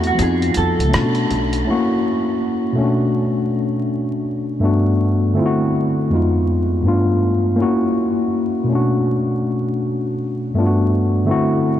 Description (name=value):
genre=lo-fi hip hop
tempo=81 BPM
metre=4/4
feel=swing 61% on 16ths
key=B minor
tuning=A4 = 440 Hz
part: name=tine electric piano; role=accompaniment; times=0.0-11.8 s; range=F2 to F#4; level=-16 LUFS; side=left 1 dB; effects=medium stereo tremolo
part: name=upright bass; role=bass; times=0.0-1.6 s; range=B1 to B2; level=-20 LUFS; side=equal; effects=none
part: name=dusty soul sampler-style drum kit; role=drums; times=0.0-1.7 s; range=hi-hat, rim click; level=-27 LUFS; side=equal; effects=none
part: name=electric guitar through a small old amp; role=melody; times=0.1-1.6 s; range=F#4 to A4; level=-24 LUFS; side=right 2 dB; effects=analog chorus, ping-pong delay
room=moderate huge ambient reverb, RT60 5.0 s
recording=dreamy mix soaked in reverb, vinyl crackle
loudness=-16 LUFS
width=side -11 dB against mid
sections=0.0-1.7 A section; 1.7-11.8 B section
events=break 0.0-1.7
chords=0.2 C#7/E#; 0.9 Bm9; 1.7 F#7; 2.8 Bm9; 4.6 Gmaj9; 5.4 D9; 6.1 Fm7b5; 6.8 G9; 7.6 F#7; 8.7 Bm9; 10.6 Gmaj9; 11.3 D9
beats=0.18 0.92 | 1.66 2.40 3.15 3.89 | 4.63 5.37 6.11 6.85 | 7.59 8.33 9.07 9.81 | 10.55 11.29